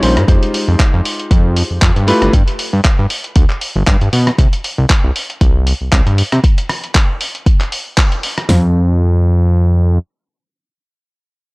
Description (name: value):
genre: nu-disco, nu disco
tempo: 117 BPM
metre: 4/4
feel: swing 55% on 16ths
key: unclear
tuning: A4 = 440 Hz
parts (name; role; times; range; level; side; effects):
- warm electric grand piano; accompaniment; 0.0-2.3 s; G3 to C5; -17 LUFS; left 1 dB; sidechain pumping, tape echo
- fat analog bass; bass; 0.0-10.0 s; G1 to C3; -12 LUFS; equal; sidechain pumping
- dusty soul sampler-style drum kit; drums; 0.0-8.5 s; handclaps, hi-hat, rim click; -19 LUFS; equal; none
- pop drum kit; drums; 0.3-8.6 s; hi-hat, kick drum, snare drum, toms; -11 LUFS; equal; none
room: little or no reverb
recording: dry, gritty hardware recording, cassette tape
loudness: -11 LUFS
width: side -28 dB against mid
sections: 0.0-8.5 A section; 8.5-11.5 B section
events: drop 0.0-8.5; band accent 8.0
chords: 0.3 Fm9; 2.1 G; 4.4 C5; 6.4 N.C.